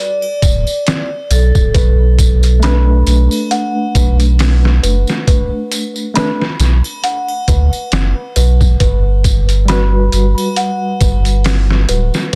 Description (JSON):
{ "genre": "trip hop", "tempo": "68 BPM", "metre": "4/4", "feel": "swing 56% on 16ths", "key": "B minor", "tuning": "A4 = 437 Hz", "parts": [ { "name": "vibraphone with hard mallets", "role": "melody", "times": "0.0-3.0 s", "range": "A4 to D5", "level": "-23 LUFS", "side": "equal", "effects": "tape echo" }, { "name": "triangle and tambourine", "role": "percussion", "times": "0.2-12.4 s", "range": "none", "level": "-28 LUFS", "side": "equal", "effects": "none" }, { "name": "warm sub bass", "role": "bass", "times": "0.4-12.1 s", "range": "D1 to D2", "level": "-13 LUFS", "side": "equal", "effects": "none" }, { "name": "trip hop sampler-style drum kit", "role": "drums", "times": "0.4-12.4 s", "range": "hi-hat, kick drum, snare drum", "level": "-17 LUFS", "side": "equal", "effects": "none" }, { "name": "music box", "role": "arpeggios", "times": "1.7-12.4 s", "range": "B4 to B5", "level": "-25 LUFS", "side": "equal", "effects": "tape echo" }, { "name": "tine electric piano", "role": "accompaniment", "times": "2.6-12.4 s", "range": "G3 to B4", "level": "-22 LUFS", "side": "equal", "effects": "medium tremolo, tape echo" } ], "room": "small room ambience", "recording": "dense, heavily limited modern master", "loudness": "-13 LUFS", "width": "mono", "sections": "0.0-12.4 A section", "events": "none", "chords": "0.0 G (rootless); 1.7 Bm7; 8.8 Gmaj7", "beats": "0.86 | 1.75 2.63 3.51 4.39 | 5.28 6.16 7.04 7.92 | 8.80 9.69 10.57 11.45 | 12.33" }